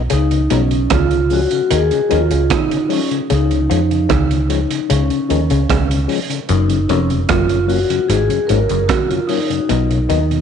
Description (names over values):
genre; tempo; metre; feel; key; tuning
roots reggae; 75 BPM; 4/4; straight; Db mixolydian; A4 = 440 Hz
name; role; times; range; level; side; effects
mellow tonewheel organ; accompaniment; 0.0-10.4 s; Gb2 to Eb4; -23 LUFS; left 9 dB; overdrive, chorus vibrato, slow rotary speaker, tape echo
vintage muted fingered electric bass; bass; 0.0-10.4 s; F1 to F2; -17 LUFS; right 1 dB; none
vibraphone with soft mallets; melody; 0.1-10.4 s; Db4 to Bb4; -18 LUFS; moving between left 6 dB and right 5 dB; auto-pan, tape echo
muted clav; riff; 0.1-10.3 s; F2 to F3; -22 LUFS; left 9 dB; none
crunchy breakbeat drum kit; drums; 0.1-10.4 s; hi-hat, kick drum, rim click; -22 LUFS; right 6 dB; none
room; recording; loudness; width
moderate echo chamber reverb, RT60 2.1 s; 1960s-style stereo with parts hard left and right, nothing above 10.4 kHz; -13 LUFS; side -7 dB against mid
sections
0.1-10.4 A section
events
none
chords
0.1 Db; 6.5 Gb; 9.7 Cb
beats
| 0.11 0.91 1.71 2.50 | 3.30 4.10 4.90 5.70 | 6.50 7.30 8.09 8.89 | 9.69